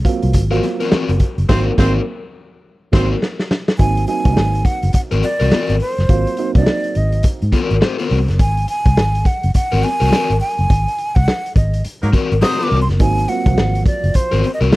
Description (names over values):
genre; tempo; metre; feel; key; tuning
funk; 104 BPM; 4/4; swing 60% on 16ths; Ab mixolydian; A4 = 440 Hz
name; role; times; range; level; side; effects
dark upright piano; stabs; 0.0-7.4, 13.0-14.3 s; F3 to F4; -22 LUFS; right 5 dB; none
raw garage drum kit; drums; 0.0-14.8 s; crash cymbal, hi-hat, kick drum, snare drum; -16 LUFS; equal; none
vintage muted fingered electric bass; bass; 0.2-14.8 s; Gb1 to Ab2; -16 LUFS; equal; none
overdriven semi-hollow guitar; accompaniment; 0.5-14.8 s; C4 to C5; -21 LUFS; left 5 dB; spring reverb
warm horn section; second line; 1.5-3.1, 12.0-12.8 s; Gb3 to C5; -23 LUFS; right 1 dB; none
breathy hollow jazz flute; melody; 3.8-14.8 s; C5 to Eb6; -20 LUFS; right 1 dB; none
room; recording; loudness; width
little or no reverb; dry, close 1970s-style studio recording; -14 LUFS; side -19 dB against mid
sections
0.0-3.8 A section; 3.8-14.8 B section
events
band accent 1.5-3.8, 10.7-13.0; drum fill 2.6-3.8; flute solo 3.8-14.8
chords
0.0 Ab9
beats
0.34 0.92 | 1.49 2.07 2.64 3.22 | 3.79 4.37 4.94 5.52 | 6.09 6.67 7.25 7.82 | 8.40 8.97 9.55 10.12 | 10.70 11.28 11.85 12.43 | 13.00 13.58 14.15 14.73